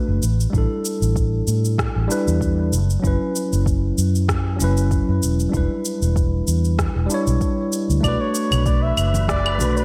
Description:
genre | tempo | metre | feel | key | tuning
sunset chillout | 96 BPM | 4/4 | swing 55% on 16ths | B minor | A4 = 442 Hz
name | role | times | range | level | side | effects
tine electric piano | accompaniment | 0.0-9.8 s | F#3 to C#5 | -26 LUFS | equal | low-pass filter, diffuse ambient delay
vintage muted fingered electric bass | bass | 0.1-9.8 s | E1 to A2 | -22 LUFS | equal | none
electronic shaker, rim click and claves | drums | 0.2-9.8 s | none | -30 LUFS | equal | none
electronic kick drum | drums | 0.5-9.4 s | none | -26 LUFS | equal | none
trumpet with bucket mute | melody | 8.0-9.8 s | B4 to E5 | -27 LUFS | equal | vintage 12-bit sampler grit, diffuse ambient delay
wind-like tuned noise texture | texture | 8.5-9.8 s | B4 to B5 | -36 LUFS | equal | built-in reverb, subtle chorus
congas | percussion | 8.5-9.7 s | none | -33 LUFS | equal | none
room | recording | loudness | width
moderate lush hall reverb, RT60 1.6 s, digital ambience | dreamy mix soaked in reverb | -20 LUFS | mono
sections
0.0-9.8 A section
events
none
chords
0.2 A7sus4; 2.7 F#7sus4; 5.5 Em7; 8.0 Bm7

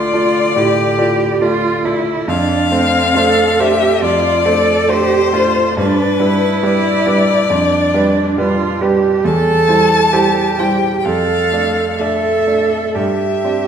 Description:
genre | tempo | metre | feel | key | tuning
classical, slow romantic movement for piano trio | 61-72 BPM | 4/4 | rubato | unclear | A4 = 440 Hz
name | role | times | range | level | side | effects
rich violin | melody | 0.0-13.7 s | B4 to A5 | -17 LUFS | left 5 dB | none
rich cello | second line | 0.0-13.7 s | C4 to A4 | -16 LUFS | right 5 dB | none
clear concert grand piano | accompaniment | 0.0-13.7 s | D2 to D5 | -17 LUFS | right 1 dB | none
room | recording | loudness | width
wet recital hall reverb, RT60 1.6 s | none | -12 LUFS | side -8 dB against mid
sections
0.0-13.7 A section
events
none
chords
0.0 Dm; 2.3 Dm7/F; 5.8 G; 7.5 G7/F; 9.2 C/E; 11.1 Dm/F; 13.0 Gsus4

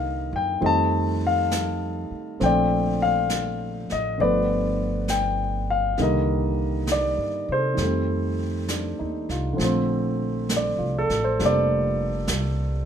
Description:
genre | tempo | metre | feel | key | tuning
jazz ballad | 67 BPM | 4/4 | swing 67% on 8ths | Bb major | A4 = 444 Hz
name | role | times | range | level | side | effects
warm grand piano | accompaniment | 0.0-12.9 s | D3 to A5 | -23 LUFS | left 1 dB | none
upright bass | bass | 0.0-12.9 s | F1 to C3 | -27 LUFS | right 1 dB | none
jazz brush drum kit | drums | 0.6-12.9 s | brushed snare drum, hi-hat, snare drum | -32 LUFS | right 2 dB | none
room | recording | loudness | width
light reverb | minimal, uncompressed stereo recording | -21 LUFS | side -8 dB against mid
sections
0.0-9.6 A section; 9.6-12.9 B section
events
break 8.7-9.6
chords
0.0 Cm7; 0.6 F9; 2.4 Bbmaj9; 4.2 G7; 6.0 Cm7; 7.8 F7; 9.6 Bbmaj9

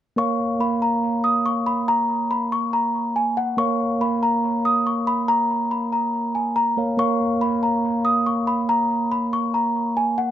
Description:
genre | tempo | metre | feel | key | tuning
hip hop | 141 BPM | 4/4 | half-time | Bb phrygian | A4 = 440 Hz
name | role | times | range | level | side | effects
small celesta | melody | 0.2-10.3 s | Gb5 to Eb6 | -21 LUFS | left 1 dB | low-pass filter, tape echo
mellow tine electric piano | accompaniment | 0.2-10.3 s | Bb3 to F5 | -23 LUFS | right 2 dB | medium stereo tremolo, low-pass filter, tape echo
room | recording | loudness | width
wet spring reverb, RT60 2.7 s | echo-heavy mix | -19 LUFS | side -11 dB against mid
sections
0.2-10.3 A section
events
none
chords
0.2 Bbm

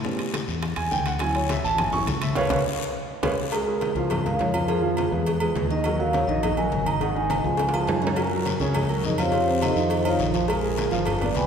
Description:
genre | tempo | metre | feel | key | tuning
Afro-Cuban jazz | 207 BPM | 4/4 | straight | Bb minor from 3.5 s | A4 = 440 Hz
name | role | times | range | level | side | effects
dark grand piano | accompaniment | 0.0-11.5 s | C3 to C#6 | -26 LUFS | right 3 dB | none
fingered electric bass | bass | 0.0-11.5 s | G1 to A2 | -28 LUFS | left 1 dB | none
bongos and cowbell | percussion | 0.0-11.5 s | none | -34 LUFS | left 5 dB | none
guiro | percussion | 0.0-3.3, 8.2-11.5 s | none | -38 LUFS | left 6 dB | none
congas | percussion | 0.1-11.5 s | none | -32 LUFS | left 3 dB | none
timbales and agogo bells | percussion | 0.2-11.4 s | none | -32 LUFS | right 2 dB | none
vibraphone with medium mallets | melody | 4.3-11.5 s | Eb4 to B5 | -26 LUFS | equal | none
room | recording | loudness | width
wet church reverb, RT60 2.9 s | recorded in a church or concert hall | -21 LUFS | side -7 dB against mid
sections
0.0-3.5 A section; 3.5-11.5 A section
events
grand piano solo 0.0-3.5; band accent 2.4-3.5; drum fill 2.8-3.5, 7.6-8.2; vibraphone solo 3.5-11.5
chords
0.0 A9; 1.2 Dmaj7; 2.4 C#7; 3.5 Bbm7; 4.7 Fdim; 5.3 E; 5.8 Ebm; 7.0 Ab5; 7.6 Db; 8.2 Gb6; 9.3 F7b13; 10.5 Bb5

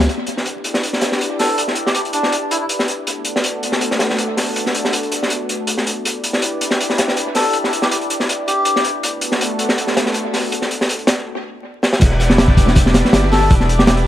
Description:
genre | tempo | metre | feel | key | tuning
drum and bass, jungle | 161 BPM | 4/4 | swing 54% on 16ths | E minor | A4 = 440 Hz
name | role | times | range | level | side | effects
saturated sub bass | bass | 0.0-0.1, 12.0-14.1 s | E1 to C#2 | -17 LUFS | equal | tube saturation
crunchy breakbeat drum kit | drums | 0.0-14.1 s | crash cymbal, hi-hat, kick drum, snare drum | -16 LUFS | equal | high-pass filter on kick, high-pass filter on hats, high-pass filter on cymbals, high-pass filter on snare, high-pass filter on room, tape echo
crunchy breakbeat drum kit | drums | 0.0-0.1, 12.0-14.0 s | hi-hat, snare drum, tambourine | -32 LUFS | right 1 dB | none
lush unison pad | sustained chords | 0.1-14.1 s | A3 to D5 | -23 LUFS | equal | chorus, vintage 12-bit sampler grit
melodica | melody | 1.4-2.7, 7.4-8.8, 13.3-13.9 s | D4 to A4 | -20 LUFS | left 1 dB | tape echo
room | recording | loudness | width
light reverb | echo-heavy mix, vinyl crackle | -15 LUFS | side -12 dB against mid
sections
0.1-12.0 A section; 12.0-14.1 B section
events
filter sweep on analog synth pad 0.1-12.0; break 11.3-12.0; drum fill 11.8; drop 12.0-14.1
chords
0.1 Em7; 3.1 Bm7; 6.0 Em7; 9.0 Bm7; 12.0 Em7

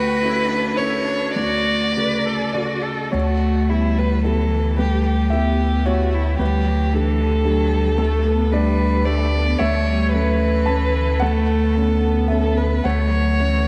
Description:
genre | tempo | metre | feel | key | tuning
neoclassical piano and strings | 100-114 BPM | 3/4 | rubato | unclear | A4 = 440 Hz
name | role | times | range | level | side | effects
dark violin | melody | 0.0-13.7 s | E4 to D5 | -25 LUFS | equal | digital delay
warm cello | second line | 0.0-13.7 s | D3 to B4 | -29 LUFS | equal | none
dark concert grand piano | accompaniment | 0.0-13.7 s | D2 to A5 | -24 LUFS | equal | none
pure sine sub bass | bass | 3.1-13.7 s | D2 | -22 LUFS | equal | none
room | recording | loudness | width
wet lush hall reverb, RT60 3.0 s | dreamy mix soaked in reverb | -19 LUFS | mono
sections
0.0-3.1 A section; 3.1-13.7 B section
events
none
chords
0.0 Dmaj7; 3.1 Gadd9/D; 9.6 A/D; 12.8 Dmaj7

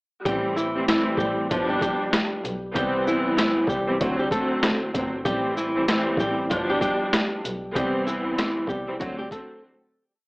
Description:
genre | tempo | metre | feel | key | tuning
hip hop, boom-bap hip-hop | 96 BPM | 4/4 | swing 60% on 16ths | A minor | A4 = 440 Hz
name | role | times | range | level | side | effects
flamenco guitar | melody | 0.3-9.6 s | E3 to A4 | -25 LUFS | equal | high-pass filter, low-pass filter
dark studio string section | accompaniment | 0.3-9.6 s | A2 to D4 | -27 LUFS | equal | cassette tape, high-pass filter, low-pass filter
rich double bass | bass | 0.3-9.3 s | G1 to D2 | -34 LUFS | equal | none
boom bap sampler-style drum kit | drums | 0.3-9.5 s | hi-hat, kick drum, rim click, shaker, snare drum | -26 LUFS | equal | overdrive
room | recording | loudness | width
light reverb | dry, gritty hardware recording, AM radio sound | -22 LUFS | side -29 dB against mid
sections
0.3-10.3 hook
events
fade-out 7.8-10.3; break 9.6-10.3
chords
0.3 Am7; 1.5 G7; 2.8 Cmaj7; 4.0 D7; 5.3 Am7; 6.5 G7; 7.8 Cmaj7; 9.0 D7

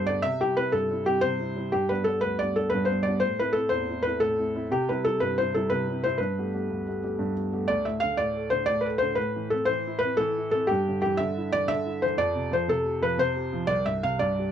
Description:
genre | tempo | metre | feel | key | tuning
celtic folk, Celtic slip jig | 120 BPM (dotted quarters) | 9/8 | straight | unclear | A4 = 436 Hz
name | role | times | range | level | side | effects
felt-muted upright piano | melody | 0.0-14.5 s | G4 to F5 | -25 LUFS | left 1 dB | none
warm upright piano | accompaniment | 0.0-14.5 s | C2 to A4 | -29 LUFS | right 1 dB | none
room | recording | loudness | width
moderate studio ambience, RT60 0.5 s | dark, warm production | -24 LUFS | side -9 dB against mid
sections
0.0-7.7 A section; 7.7-14.5 B section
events
none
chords
0.2 C; 1.7 G; 3.2 Am; 4.7 C; 6.2 Gadd9; 7.7 D5; 9.2 Am; 10.7 Cadd9/G (rootless); 12.2 Fadd9; 13.7 C5

